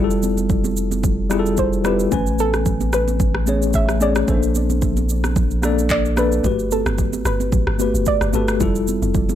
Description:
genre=amapiano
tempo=111 BPM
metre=4/4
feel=swing 55% on 16ths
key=unclear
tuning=A4 = 441 Hz
part: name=soft round pluck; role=melody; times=0.0-9.1 s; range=A4 to E5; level=-24 LUFS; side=right 1 dB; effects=chorus, ping-pong delay
part: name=mellow tine electric piano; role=accompaniment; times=0.0-9.3 s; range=G3 to G#5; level=-21 LUFS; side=left 3 dB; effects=medium stereo tremolo
part: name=saturated sub bass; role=bass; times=0.0-6.4 s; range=F1 to Bb1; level=-22 LUFS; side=equal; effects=none
part: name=afro-pop drum kit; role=drums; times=0.1-9.3 s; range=handclaps, kick drum, rim click, shaker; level=-23 LUFS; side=equal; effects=none
part: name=congas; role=percussion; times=0.2-9.3 s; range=none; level=-28 LUFS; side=right 9 dB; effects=none
part: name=deep log drum bass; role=bass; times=6.4-9.3 s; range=F1 to A1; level=-22 LUFS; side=equal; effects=none
room=digital ambience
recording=dark, warm production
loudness=-16 LUFS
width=side -11 dB against mid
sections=0.0-9.3 A section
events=none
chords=0.0 Fmaj9; 2.1 Amaj9; 4.3 Bbmaj9; 6.4 Gmaj9; 8.6 Fmaj9

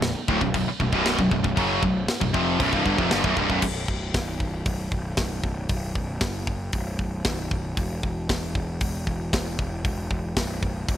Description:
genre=heavy metal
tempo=116 BPM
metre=4/4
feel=straight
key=B phrygian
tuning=A4 = 442 Hz
part: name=fuzz guitar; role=riff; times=0.0-3.6 s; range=B1 to F#3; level=-28 LUFS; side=right 1 dB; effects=distortion
part: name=high-gain distorted guitar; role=riff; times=0.0-3.6 s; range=B1 to F#3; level=-26 LUFS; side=right 7 dB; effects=distortion
part: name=tight distorted guitar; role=riff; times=0.0-3.6 s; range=B1 to F#3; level=-26 LUFS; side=left 8 dB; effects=distortion
part: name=fuzz picked electric bass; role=bass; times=0.0-11.0 s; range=B0 to G1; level=-29 LUFS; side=equal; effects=overdrive
part: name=tight metal drum kit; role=drums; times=0.0-11.0 s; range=crash cymbal, hi-hat, kick drum, snare drum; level=-27 LUFS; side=equal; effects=none
room=little or no reverb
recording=none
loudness=-23 LUFS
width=side -11 dB against mid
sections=0.0-3.6 A section; 3.6-11.0 B section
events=none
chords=0.0 Bm; 3.6 B5; 7.8 E5

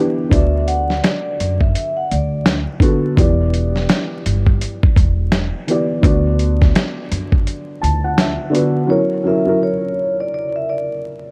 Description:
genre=lo-fi hip hop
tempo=84 BPM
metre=4/4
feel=swing 59% on 16ths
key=D major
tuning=A4 = 439 Hz
part: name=felt-muted upright piano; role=accompaniment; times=0.0-11.3 s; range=D3 to A5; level=-22 LUFS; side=equal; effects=cassette tape, low-pass filter
part: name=vibraphone with medium mallets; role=melody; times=0.3-2.4, 8.9-11.0 s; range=C#5 to F#5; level=-24 LUFS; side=equal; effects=low-pass filter
part: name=upright bass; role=bass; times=0.3-8.4 s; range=E1 to F#2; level=-21 LUFS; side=equal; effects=none
part: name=dusty soul sampler-style drum kit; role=drums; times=0.3-8.7 s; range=hi-hat, kick drum, snare drum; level=-18 LUFS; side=equal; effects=overdrive, vintage 12-bit sampler grit
room=light reverb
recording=vinyl crackle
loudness=-17 LUFS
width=mono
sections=0.0-8.9 A section; 8.9-11.3 B section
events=break 7.5-8.9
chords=0.3 D6; 3.2 Em7; 6.0 D6; 8.9 F#7

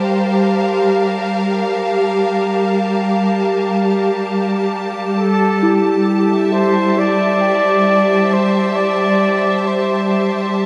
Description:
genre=ambient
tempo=free time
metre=none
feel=none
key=G dorian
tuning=A4 = 440 Hz
part: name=rich studio string section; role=sustained chords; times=0.0-10.7 s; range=G3 to A5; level=-18 LUFS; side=equal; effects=none
part: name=soft synth bell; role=arpeggios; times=0.0-10.7 s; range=E4 to G5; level=-24 LUFS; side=equal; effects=chorus, phaser, diffuse ambient delay
part: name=bowed-like drone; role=drone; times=1.8-10.7 s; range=G3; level=-29 LUFS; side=equal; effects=none
part: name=clear flugelhorn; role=melody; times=5.2-10.7 s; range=A4 to D5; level=-20 LUFS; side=equal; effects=diffuse ambient delay
room=wet huge ambient reverb, RT60 7.9 s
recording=in a vast, echoing space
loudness=-16 LUFS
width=mono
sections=0.0-10.7 A section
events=none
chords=0.0 Gm7; 5.2 Am/G

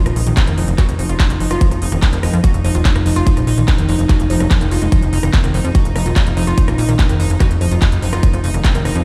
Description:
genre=psychedelic trance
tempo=145 BPM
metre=4/4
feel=straight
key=unclear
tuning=A4 = 439 Hz
part: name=pulsing gated texture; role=sustained chords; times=0.0-9.0 s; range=Eb4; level=-26 LUFS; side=equal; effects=chorus, built-in reverb, sidechain pumping
part: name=woody wave-folded pluck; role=riff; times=0.1-8.9 s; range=Eb3 to Gb4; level=-26 LUFS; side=equal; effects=chorus, cassette tape, sidechain pumping, tape echo
part: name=plucky analog bass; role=bass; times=0.1-9.0 s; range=Eb1 to F2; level=-19 LUFS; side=equal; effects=none
part: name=big-room dance drum kit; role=drums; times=0.1-9.0 s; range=handclaps, hi-hat, rim click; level=-27 LUFS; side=equal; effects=overdrive
part: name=electronic kick drum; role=drums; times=0.4-8.7 s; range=none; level=-15 LUFS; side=equal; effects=none
room=digital ambience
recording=played on a big sound system in a bare room, stone room reverb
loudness=-15 LUFS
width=mono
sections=0.0-9.0 A section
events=none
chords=0.0 F5

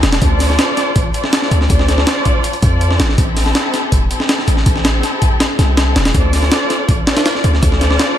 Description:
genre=drum and bass, jungle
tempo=162 BPM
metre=4/4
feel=straight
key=unclear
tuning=A4 = 435 Hz
part: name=warm symphonic string section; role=sustained chords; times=0.0-8.2 s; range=C4 to D5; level=-19 LUFS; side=equal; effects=none
part: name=warm 808-style bass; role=bass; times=0.0-8.0 s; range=E1 to F2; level=-14 LUFS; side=equal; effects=none
part: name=breakbeat sampler-style drum kit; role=drums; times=0.0-8.1 s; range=hi-hat, kick drum, snare drum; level=-14 LUFS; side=equal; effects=none
room=little or no reverb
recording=lossy compression artefacts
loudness=-12 LUFS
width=side -10 dB against mid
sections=0.0-8.2 A section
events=none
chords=0.2 Dm7; 3.2 Am7; 6.1 Dm7

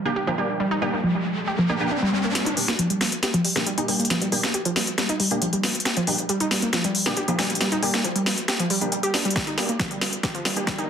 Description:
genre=driving peak-time techno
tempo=137 BPM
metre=4/4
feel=straight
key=G minor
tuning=A4 = 440 Hz
part: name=riser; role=sound effects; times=0.1-2.4, 10.2-10.9 s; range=none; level=-30 LUFS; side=equal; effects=none
part: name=rave stab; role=stabs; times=0.1-10.9 s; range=Bb3 to G4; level=-28 LUFS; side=right 1 dB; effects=chorus, built-in reverb, vintage 12-bit sampler grit, sidechain pumping, tape echo
part: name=wide unison pluck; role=riff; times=0.2-10.9 s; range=F3 to G4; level=-25 LUFS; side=equal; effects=tube saturation, sidechain pumping, dub echo
part: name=techno drum kit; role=drums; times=2.4-10.9 s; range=hi-hat, snare drum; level=-23 LUFS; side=left 1 dB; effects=high-pass filter on snare, sidechain pumping on hats, high-pass filter on hats, high-pass filter on room
part: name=electronic kick drum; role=drums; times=9.4-10.8 s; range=none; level=-30 LUFS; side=equal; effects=none
room=wet digital room reverb, RT60 1.0 s, digital ambience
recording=dense, heavily limited modern master, high-pass filter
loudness=-21 LUFS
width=side -8 dB against mid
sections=0.0-2.4 A section; 2.4-10.9 B section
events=filter sweep on synth arpeggio sound 0.0-2.4, 2.4-10.9; riser 0.1-2.4; build-up 2.4-10.9; drum fill 2.4-10.9; filter sweep on synth stab 2.4-10.9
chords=0.0 Gm

